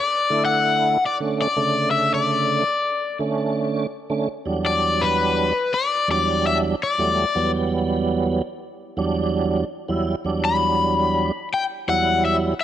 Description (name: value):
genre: blues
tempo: 83 BPM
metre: 4/4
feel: straight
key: unclear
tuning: A4 = 440 Hz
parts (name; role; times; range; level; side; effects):
- cranked stack guitar; melody; 0.0-12.6 s; B4 to B5; -20 LUFS; left 4 dB; overdrive
- tonewheel organ; accompaniment; 0.3-12.5 s; E2 to E4; -22 LUFS; right 3 dB; slow rotary speaker, overdrive, chorus vibrato
room: moderate plate reverb, RT60 2.7 s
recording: none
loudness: -19 LUFS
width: side -11 dB against mid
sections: 0.0-12.6 A section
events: none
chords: 0.0 Bm7 (rootless); 4.3 Em7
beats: 0.67 | 1.39 2.12 2.84 3.56 | 4.29 5.01 5.73 6.45 | 7.17 7.90 8.62 9.34 | 10.07 10.79 11.51 12.23